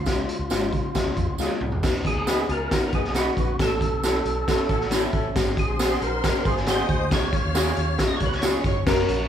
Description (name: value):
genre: uptempo 1960s-style soul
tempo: 136 BPM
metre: 4/4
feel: straight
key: unclear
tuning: A4 = 440 Hz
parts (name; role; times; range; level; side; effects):
- percussive tonewheel organ; melody; 0.0-8.4 s; E#4 to D#5; -29 LUFS; equal; chorus vibrato, fast rotary speaker
- vintage muted fingered electric bass; bass; 0.0-9.3 s; F#1 to C#3; -30 LUFS; equal; none
- dark concert grand piano; accompaniment; 0.1-9.1 s; G#3 to A#4; -30 LUFS; left 4 dB; none
- raw garage drum kit; drums; 0.1-9.2 s; crash cymbal, hi-hat, kick drum, snare drum, toms; -24 LUFS; equal; vintage 12-bit sampler grit
- tambourine; percussion; 0.1-9.0 s; none; -37 LUFS; right 5 dB; none
- electric guitar through a small old amp; stabs; 0.5-8.6 s; G#3 to B4; -32 LUFS; right 3 dB; tremolo
- mellow horn section; second line; 0.9-9.3 s; E3 to C#5; -34 LUFS; right 1 dB; none
- electric guitar through a small old amp; riff; 2.3-7.1 s; C#4 to C#5; -34 LUFS; left 3 dB; none
- warm studio string section; second line; 5.4-9.3 s; C#4 to E#6; -33 LUFS; equal; none
room: moderate large studio reverb, RT60 1.1 s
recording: band playing live in one room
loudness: -21 LUFS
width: side -9 dB against mid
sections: 0.0-1.8 A section; 1.8-8.9 B section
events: band accent 0.1-1.8; drum fill 1.4-1.8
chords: 0.1 C#; 1.8 B; 3.6 A; 5.4 G#7; 7.1 C#